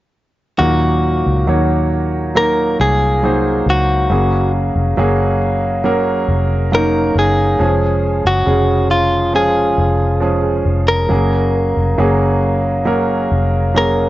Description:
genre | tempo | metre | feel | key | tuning
pop ballad | 68 BPM | 4/4 | straight | unclear | A4 = 441 Hz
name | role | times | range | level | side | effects
direct-recorded clean electric guitar | melody | 0.6-14.1 s | F4 to Bb4 | -17 LUFS | left 1 dB | none
clear concert grand piano | accompaniment | 0.6-14.1 s | Bb2 to Db5 | -17 LUFS | right 1 dB | none
vintage muted fingered electric bass | bass | 0.6-14.1 s | F1 to Eb2 | -17 LUFS | equal | none
room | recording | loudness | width
studio ambience | dry, gritty hardware recording, nothing above 7.6 kHz | -13 LUFS | side -16 dB against mid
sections
0.6-14.1 A section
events
none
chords
0.6 Ebm; 4.1 Gbadd9; 7.6 Db/F; 11.1 Gbadd9

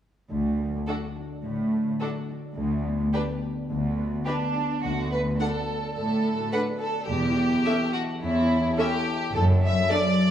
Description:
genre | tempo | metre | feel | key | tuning
cinematic, playful, whimsical film cue | 106 BPM | 4/4 | straight | D major | A4 = 440 Hz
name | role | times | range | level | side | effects
concert harp | arpeggios | 0.3-10.3 s | F#2 to A5 | -30 LUFS | left 3 dB | none
rich symphonic cello section | bass | 0.3-9.8 s | D2 to A2 | -27 LUFS | right 1 dB | none
rich chamber violin section | melody | 0.9-10.0 s | A4 to F#5 | -35 LUFS | left 3 dB | none
rich chamber violin section | second line | 0.9-10.3 s | D4 to E5 | -28 LUFS | equal | none
rich chamber viola section | accompaniment | 0.9-10.0 s | C#4 to A4 | -31 LUFS | right 2 dB | none
rich chamber double bass section | bass | 4.8-9.8 s | E1 to D2 | -27 LUFS | right 2 dB | none
room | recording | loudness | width
wet recital hall reverb, RT60 1.6 s | small room ambience, faint mains hum | -23 LUFS | side -10 dB against mid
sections
0.3-4.8 A section; 4.8-10.3 B section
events
none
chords
0.3 D; 2.6 G/D; 4.8 D; 7.1 A7/E; 9.3 D/F#

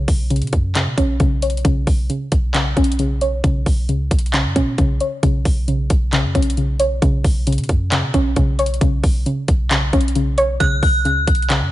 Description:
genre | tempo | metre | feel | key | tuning
hip hop, trap | 134 BPM | 4/4 | half-time | unclear | A4 = 436 Hz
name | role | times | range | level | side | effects
soft round pluck | accompaniment | 0.0-11.7 s | C#3 to C#5 | -20 LUFS | left 1 dB | chorus, low-pass filter
clean 808-style bass | bass | 0.0-11.7 s | B1 to B2 | -20 LUFS | equal | none
trap drum kit | drums | 0.1-11.6 s | handclaps, hi-hat, kick drum | -18 LUFS | equal | none
metallic FM bell | second line | 10.6-11.0 s | F#6 | -19 LUFS | equal | chorus, ping-pong delay
room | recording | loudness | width
little or no reverb | nothing above 10.8 kHz | -15 LUFS | side -15 dB against mid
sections
0.0-11.7 A section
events
filter sweep on synth pluck 0.0-8.8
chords
0.0 Bsus2

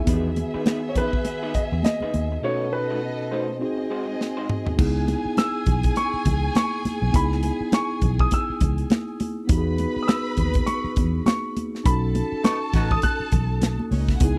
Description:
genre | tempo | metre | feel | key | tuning
lush 1970s-style soul | 102 BPM | 4/4 | swing 58% on 16ths | C# minor | A4 = 440 Hz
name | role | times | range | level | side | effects
warm concert grand piano | melody | 0.0-13.9 s | B4 to F#6 | -31 LUFS | equal | none
warm studio violin section | second line | 0.0-14.4 s | B3 to B5 | -35 LUFS | equal | none
mellow tine electric piano | accompaniment | 0.0-14.4 s | B2 to A4 | -31 LUFS | equal | none
electric guitar through a small old amp | riff | 0.1-4.7, 14.2 s | G#3 to B#4 | -34 LUFS | equal | none
vintage muted fingered electric bass | bass | 0.1-14.4 s | A1 to E2 | -27 LUFS | equal | none
modern studio drum kit | drums | 0.1-14.4 s | crash cymbal, hi-hat, kick drum, snare drum, toms | -25 LUFS | equal | none
congas | percussion | 0.1-14.4 s | none | -32 LUFS | equal | none
warm horn section | stabs | 12.4-12.9 s | A3 to F#4 | -34 LUFS | equal | none
room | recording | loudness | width
little or no reverb | dry, close 1970s-style studio recording | -23 LUFS | mono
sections
0.0-4.8 A section; 4.8-14.4 B section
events
break 2.4-4.8; drum fill 4.2-4.8; band accent 11.9-14.2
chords
0.1 Emaj7; 2.4 B7; 3.6 G#7; 4.8 C#m7; 9.5 Emaj7; 11.9 B7

